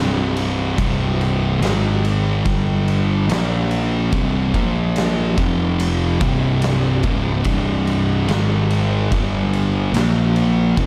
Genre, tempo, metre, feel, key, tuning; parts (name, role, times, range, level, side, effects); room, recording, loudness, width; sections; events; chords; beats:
stoner and doom metal; 72 BPM; 4/4; straight; C minor; A4 = 437 Hz
thick fuzz guitar; riff; 0.0-10.9 s; C2 to Bb3; -23 LUFS; equal; distortion
thick fuzz guitar; riff; 0.0-10.9 s; C2 to Bb3; -25 LUFS; equal; distortion
fuzz picked electric bass; bass; 0.0-10.9 s; C1 to Bb1; -25 LUFS; equal; overdrive
oversized low-tuned drum kit; drums; 0.4-10.9 s; kick drum, ride cymbal, snare drum; -26 LUFS; equal
moderate large studio reverb, RT60 1.1 s, studio ambience; -19 LUFS; mono
0.0-10.9 A section
0.0 C5; 1.6 Ab5; 2.5 G5; 3.3 Bb5; 4.1 C5; 4.5 Bb5; 5.4 F5; 6.2 C5; 8.3 Ab5; 9.1 G5; 9.9 Bb5
| 0.78 1.61 2.45 3.29 | 4.12 4.95 5.79 6.62 | 7.45 8.28 9.11 9.93 | 10.76